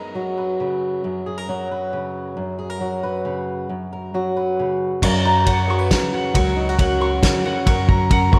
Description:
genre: indie folk with a building arrangement.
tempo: 136 BPM.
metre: 3/4.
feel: straight.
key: F# major.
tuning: A4 = 441 Hz.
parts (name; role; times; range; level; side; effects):
fingerpicked steel-string acoustic guitar; accompaniment; 0.0-8.4 s; F#2 to B4; -26 LUFS; equal; none.
picked plugged-in steel-string acoustic guitar; accompaniment; 5.0-8.4 s; F#3 to A#4; -27 LUFS; equal; none.
mandolin; arpeggios; 5.0-8.4 s; F#5 to C#6; -25 LUFS; equal; none.
upright bass; bass; 5.0-8.4 s; C#2 to F#2; -24 LUFS; equal; none.
natural country drum kit; drums; 5.0-8.4 s; crash cymbal, kick drum, ride cymbal, snare drum; -21 LUFS; equal; none.
room: wet echo chamber reverb, RT60 2.5 s.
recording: none.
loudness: -21 LUFS.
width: mono.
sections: 0.0-5.0 A section; 5.0-8.4 B section.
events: build-up 5.0-8.4; drum fill 5.0-8.4.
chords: 0.0 F#.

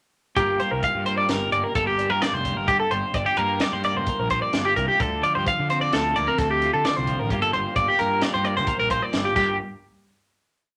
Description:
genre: math rock and midwest emo.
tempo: 130 BPM.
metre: 5/4.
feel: straight.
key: G minor.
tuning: A4 = 440 Hz.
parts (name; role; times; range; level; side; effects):
twelve-string electric guitar; accompaniment; 0.4-9.6 s; G2 to Bb4; -32 LUFS; equal; none.
twelve-string electric guitar; arpeggios; 0.4-9.6 s; G4 to F5; -24 LUFS; equal; none.
fuzz fingered electric bass; bass; 0.4-9.6 s; F1 to D3; -33 LUFS; equal; overdrive.
compact cocktail drum kit; drums; 0.4-9.5 s; crash cymbal, hi-hat, kick drum, snare drum; -31 LUFS; equal; none.
room: moderate club reverb, RT60 0.7 s.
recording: none.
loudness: -23 LUFS.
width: mono.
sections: 0.4-9.6 A section; 9.6-10.8 final hit.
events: drum fill 9.4.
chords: 0.4 Gm7; 5.0 Dm7; 7.3 Gm7; 9.6 N.C..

